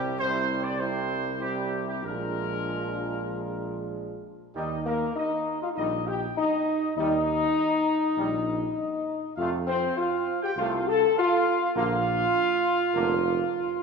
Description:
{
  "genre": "classical, ceremonial fanfare",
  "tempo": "100 BPM",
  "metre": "4/4",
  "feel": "straight",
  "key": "unclear",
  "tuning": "A4 = 440 Hz",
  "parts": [
    { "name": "mellow trumpet section", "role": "melody", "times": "0.0-13.8 s", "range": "G4 to A5", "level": "-31 LUFS", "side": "equal", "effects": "none" },
    { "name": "bright trombone section", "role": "sustained chords", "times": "0.0-13.2 s", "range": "C3 to Bb3", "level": "-36 LUFS", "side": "right 4 dB", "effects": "none" },
    { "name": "warm French horn section", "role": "sustained chords", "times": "0.0-13.8 s", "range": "Bb3 to A4", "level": "-26 LUFS", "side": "left 1 dB", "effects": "none" },
    { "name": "dark tuba", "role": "bass", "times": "0.0-13.4 s", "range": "F1 to F2", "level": "-34 LUFS", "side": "right 3 dB", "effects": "none" }
  ],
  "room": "wet scoring stage reverb, RT60 2.1 s",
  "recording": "minimal, uncompressed stereo recording",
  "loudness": "-24 LUFS",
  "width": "side -5 dB against mid",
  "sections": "0.0-4.6 A section; 4.6-13.8 B section",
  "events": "none",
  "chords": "0.0 C; 2.0 Bb7; 4.6 Eb; 9.4 F; 11.8 Bb",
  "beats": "0.19 0.79 1.41 | 2.04 2.67 3.30 3.93 | 4.56 5.17 5.77 6.37 | 6.97 7.57 8.17 8.77 | 9.37 9.96 10.56 11.16 | 11.76 12.35 12.95 13.54"
}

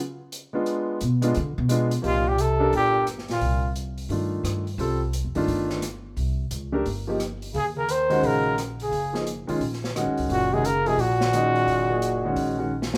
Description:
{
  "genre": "modal jazz",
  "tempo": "174 BPM",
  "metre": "4/4",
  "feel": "swing 64% on 8ths",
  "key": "unclear",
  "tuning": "A4 = 439 Hz",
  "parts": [
    { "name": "open jazz drum kit", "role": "drums", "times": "0.3-13.0 s", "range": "hi-hat, rim click, snare drum", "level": "-37 LUFS", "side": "equal", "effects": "none" },
    { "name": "warm concert grand piano", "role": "accompaniment", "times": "0.5-12.7 s", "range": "Eb3 to Bb4", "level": "-29 LUFS", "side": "equal", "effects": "none" },
    { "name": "upright bass", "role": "bass", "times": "1.0-13.0 s", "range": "Gb1 to D3", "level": "-31 LUFS", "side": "equal", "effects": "none" },
    { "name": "breathy bass clarinet", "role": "second line", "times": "2.0-3.7, 7.5-12.7 s", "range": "Bb2 to Eb3", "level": "-31 LUFS", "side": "equal", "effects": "none" },
    { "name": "breathy trumpet", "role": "melody", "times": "2.1-3.7, 7.6-12.7 s", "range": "F4 to C5", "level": "-26 LUFS", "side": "equal", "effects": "none" }
  ],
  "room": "light reverb",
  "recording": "band playing live in one room",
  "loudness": "-25 LUFS",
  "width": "mono",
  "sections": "0.0-2.0 A section; 2.0-13.0 B section",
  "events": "upright bass solo 0.0-2.0; drum fill 12.7",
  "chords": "0.0 Db7(no3) (rootless); 0.7 Bdim7; 2.0 Cm11; 7.5 Ebm11",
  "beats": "0.32 | 0.66 1.00 1.35 1.69 | 2.04 2.38 2.73 3.07 | 3.42 3.76 4.10 4.45 | 4.79 5.14 5.48 5.83 | 6.17 6.52 6.86 7.20 | 7.55 7.89 8.24 8.58 | 8.92 9.27 9.61 9.96 | 10.30 10.64 10.99 11.33 | 11.68 12.02 12.36 12.71"
}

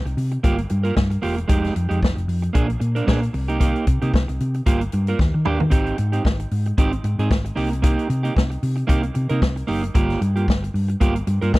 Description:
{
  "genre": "disco",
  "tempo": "114 BPM",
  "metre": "4/4",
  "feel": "swing 56% on 16ths",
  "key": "unclear",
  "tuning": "A4 = 440 Hz",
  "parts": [
    { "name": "hollow-body short-scale fingered electric bass", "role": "bass", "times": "0.0-11.6 s", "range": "E1 to Eb3", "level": "-22 LUFS", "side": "equal", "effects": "none" },
    { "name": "electric guitar at the edge of break-up", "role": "accompaniment", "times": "0.1-11.6 s", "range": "Ab3 to Bb4", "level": "-25 LUFS", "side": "right 3 dB", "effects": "spring reverb" },
    { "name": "vintage drum kit", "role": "drums", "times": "0.1-11.6 s", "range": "hi-hat, kick drum, snare drum, toms", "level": "-19 LUFS", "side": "equal", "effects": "none" }
  ],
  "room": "little or no reverb",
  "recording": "dry, close 1970s-style studio recording",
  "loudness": "-18 LUFS",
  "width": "side -20 dB against mid",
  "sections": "0.0-5.7 A section; 5.7-11.6 B section",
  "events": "drum fill 5.2-5.7",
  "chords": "0.4 Gm7; 1.5 Fm9; 2.6 Bb7; 3.3 Cm7; 4.7 Gm7; 5.2 Ebmaj7; 5.7 Abmaj7; 7.6 Cm7; 10.0 Gm7",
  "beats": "0.44 0.97 | 1.50 2.02 2.55 3.08 | 3.61 4.14 4.67 5.19 | 5.72 6.25 6.78 7.31 | 7.84 8.37 8.89 9.42 | 9.95 10.48 11.01 11.54"
}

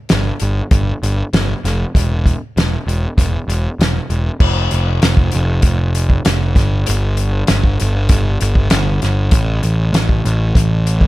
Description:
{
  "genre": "indie rock",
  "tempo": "98 BPM",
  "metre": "4/4",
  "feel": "straight",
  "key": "unclear",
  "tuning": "A4 = 439 Hz",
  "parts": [
    { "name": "fuzz picked electric bass", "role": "bass", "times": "0.1-11.1 s", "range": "E1 to A1", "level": "-15 LUFS", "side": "equal", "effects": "overdrive" },
    { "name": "loose indie drum kit", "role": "drums", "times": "0.1-11.1 s", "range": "crash cymbal, hi-hat, kick drum, snare drum", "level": "-15 LUFS", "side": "equal", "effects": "none" }
  ],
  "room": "little or no reverb",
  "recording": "none",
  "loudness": "-13 LUFS",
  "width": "side -17 dB against mid",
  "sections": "0.0-4.4 A section; 4.4-11.1 B section",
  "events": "none",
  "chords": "none",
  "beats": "0.10 0.72 1.34 | 1.95 2.57 3.18 3.79 | 4.41 5.02 5.64 6.25 | 6.87 7.48 8.10 8.71 | 9.32 9.94 10.55"
}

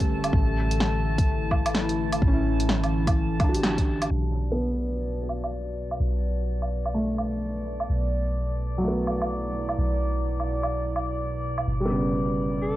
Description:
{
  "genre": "future garage",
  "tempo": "127 BPM",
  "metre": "4/4",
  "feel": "swing 61% on 16ths",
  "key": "B minor",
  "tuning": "A4 = 437 Hz",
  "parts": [
    { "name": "felt-muted upright piano", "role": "accompaniment", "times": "0.0-12.8 s", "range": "C#3 to G4", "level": "-30 LUFS", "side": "right 1 dB", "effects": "vintage 12-bit sampler grit, sidechain pumping, low-pass filter, cassette tape, analog delay" },
    { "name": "warbly tape-like pad", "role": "sustained chords", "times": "0.0-12.8 s", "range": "B2 to B4", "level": "-32 LUFS", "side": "equal", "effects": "chorus, built-in reverb, sidechain pumping, cassette tape" },
    { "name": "soft 808-style bass", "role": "bass", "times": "0.0-12.8 s", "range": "G1 to B1", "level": "-28 LUFS", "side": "equal", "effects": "sidechain pumping" },
    { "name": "deep house drum kit", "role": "drums", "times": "0.0-11.7 s", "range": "hi-hat, snare drum, woodblock", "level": "-28 LUFS", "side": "right 1 dB", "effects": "low-pass filter on hats, cassette tape, low-pass filter on snare, low-pass filter on perc" },
    { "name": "electronic kick drum", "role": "drums", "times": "0.0-3.9 s", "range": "none", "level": "-23 LUFS", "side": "equal", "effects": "cassette tape" },
    { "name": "drifting glass-harmonics texture", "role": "texture", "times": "0.0-12.8 s", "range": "D5 to A5", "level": "-35 LUFS", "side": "left 1 dB", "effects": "chorus, built-in reverb, cassette tape" },
    { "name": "bright alto saxophone", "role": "melody", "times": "12.6-12.8 s", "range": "A4", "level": "-28 LUFS", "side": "equal", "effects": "cassette tape" }
  ],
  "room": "light reverb",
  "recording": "home recording on cassette, low-pass filter",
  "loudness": "-23 LUFS",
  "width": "side -15 dB against mid",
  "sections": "0.0-4.1 A section; 4.1-12.8 B section",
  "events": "band accent 3.6; filter sweep on felt piano 4.1-12.8; filter sweep 4.1-12.8",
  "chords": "0.3 Asus4; 4.1 Bm; 11.7 Gsus2",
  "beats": "| 0.33 0.80 1.28 1.75 | 2.22 2.69 3.17 3.64 | 4.11 4.58 5.05 5.53 | 6.00 6.47 6.95 7.42 | 7.89 8.36 8.84 9.31 | 9.78 10.25 10.72 11.20 | 11.67 12.14 12.61"
}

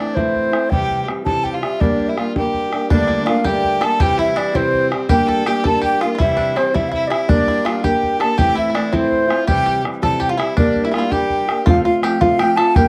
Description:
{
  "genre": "celtic folk, Celtic jig",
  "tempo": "110 BPM (dotted quarters)",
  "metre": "6/8",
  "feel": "straight",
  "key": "G dorian",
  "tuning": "A4 = 440 Hz",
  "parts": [
    { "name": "baroque flute", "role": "melody", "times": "0.0-12.9 s", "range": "C5 to A5", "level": "-21 LUFS", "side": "equal", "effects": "none" },
    { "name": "clear fiddle", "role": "second line", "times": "0.0-11.7 s", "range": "C4 to A4", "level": "-29 LUFS", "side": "equal", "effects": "none" },
    { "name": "fingerpicked acoustic archtop guitar", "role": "accompaniment", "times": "0.0-12.9 s", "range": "G2 to G4", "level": "-22 LUFS", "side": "equal", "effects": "none" },
    { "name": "bodhran", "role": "percussion", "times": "0.2-12.8 s", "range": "none", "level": "-23 LUFS", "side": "equal", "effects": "none" },
    { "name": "bluegrass banjo", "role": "second line", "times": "2.9-12.9 s", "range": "C4 to A4", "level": "-28 LUFS", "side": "equal", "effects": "none" }
  ],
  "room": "light reverb",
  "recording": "dark, warm production",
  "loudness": "-17 LUFS",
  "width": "mono",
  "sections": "0.0-2.9 A section; 2.9-11.7 A section; 11.7-12.9 B section",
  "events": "none",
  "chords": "0.0 Am; 0.7 C; 1.8 Gm; 2.9 Gmadd9; 4.0 C; 5.1 Gm; 6.2 C; 7.3 Gm; 8.4 Am; 9.5 C; 10.6 Gm; 11.7 F",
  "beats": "0.16 | 0.71 1.26 | 1.81 2.36 | 2.91 3.45 | 4.00 4.55 | 5.10 5.65 | 6.20 6.74 | 7.29 7.84 | 8.38 8.93 | 9.48 10.02 | 10.57 11.12 | 11.66 12.21 | 12.76"
}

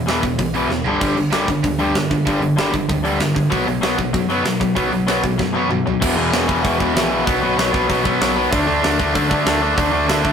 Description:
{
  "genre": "punk rock",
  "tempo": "192 BPM",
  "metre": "4/4",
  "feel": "straight",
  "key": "unclear",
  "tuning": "A4 = 440 Hz",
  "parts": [
    { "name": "crunchy overdriven guitar", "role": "riff", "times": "0.0-10.3 s", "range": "E2 to D4", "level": "-19 LUFS", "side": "left 4 dB", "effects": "none" },
    { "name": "tight distorted guitar", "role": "riff", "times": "0.0-10.3 s", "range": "E2 to D4", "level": "-21 LUFS", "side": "right 5 dB", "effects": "distortion" },
    { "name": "overdriven picked electric bass", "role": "bass", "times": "0.0-10.3 s", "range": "E1 to D3", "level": "-28 LUFS", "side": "right 1 dB", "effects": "none" },
    { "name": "tight metal drum kit", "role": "drums", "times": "0.1-10.3 s", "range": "crash cymbal, hi-hat, kick drum, snare drum, toms", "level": "-22 LUFS", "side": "right 1 dB", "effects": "none" }
  ],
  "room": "moderate studio reverb, RT60 0.6 s",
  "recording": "rough rehearsal-room recording",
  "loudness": "-16 LUFS",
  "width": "side -7 dB against mid",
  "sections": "0.0-6.0 A section; 6.0-10.3 B section",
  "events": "drum fill 0.7-1.0, 5.4-6.0",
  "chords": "0.0 E5; 0.9 G5; 3.5 B5; 6.0 E5; 7.3 B5; 8.5 D5",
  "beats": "0.08 0.39 0.70 | 1.01 1.33 1.64 1.95 | 2.27 2.58 2.89 3.20 | 3.52 3.83 4.14 4.46 | 4.77 5.08 5.39 5.71 | 6.02 6.33 6.64 6.96 | 7.27 7.58 7.89 8.21 | 8.52 8.83 9.15 9.46 | 9.77 10.09"
}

